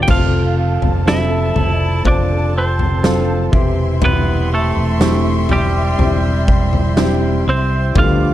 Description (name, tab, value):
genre	pop ballad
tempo	61 BPM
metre	4/4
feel	straight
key	C major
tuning	A4 = 440 Hz
part	semi-hollow electric guitar	melody	0.0-8.3 s	G3 to G5	-20 LUFS	right 2 dB	none
part	warm concert grand piano	accompaniment	0.0-8.3 s	C3 to G5	-22 LUFS	left 3 dB	none
part	direct-recorded clean electric guitar	arpeggios	0.0-8.3 s	D3 to A4	-27 LUFS	right 7 dB	none
part	fretless electric bass	bass	0.0-8.3 s	E1 to D2	-17 LUFS	equal	none
part	warm studio violin section	second line	0.1-8.3 s	A4 to D6	-27 LUFS	left 2 dB	tape echo
part	huge arena drum kit	drums	0.1-8.2 s	crash cymbal, kick drum, snare drum, toms	-18 LUFS	equal	none
room	small room ambience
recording	dark, warm production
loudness	-13 LUFS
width	side -13 dB against mid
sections	0.1-8.3 A section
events	none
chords	0.1 F; 3.5 C/E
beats	| 0.09 1.07 2.05 3.04 | 4.02 5.00 5.99 6.97 | 7.96